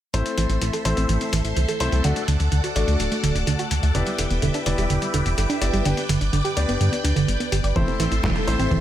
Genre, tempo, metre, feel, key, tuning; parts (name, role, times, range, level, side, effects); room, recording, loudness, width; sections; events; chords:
italo disco; 126 BPM; 4/4; straight; A4 = 440 Hz
phased string machine; sustained chords; 0.1-8.8 s; A4 to D6; -29 LUFS; equal; ensemble chorus, phaser
analog pluck; arpeggios; 0.1-8.8 s; D3 to D5; -26 LUFS; right 4 dB; chorus, digital delay
clear grand piano; stabs; 0.1-8.8 s; A3 to G5; -28 LUFS; left 3 dB; low-pass filter, digital delay
chorused synth bass; bass; 0.1-8.8 s; D1 to G2; -22 LUFS; equal
dusty soul sampler-style drum kit; drums; 0.1-8.8 s; hi-hat, snare drum; -30 LUFS; left 2 dB; overdrive, gated reverb
electronic kick drum; drums; 7.8-8.8 s; -26 LUFS; equal; overdrive
light reverb; -19 LUFS; side -12 dB against mid
0.1-8.8 A section
filter sweep on synth arpeggio sound 0.1-8.8
0.1 Am; 2.0 D; 4.0 Em7; 5.9 G; 7.8 Am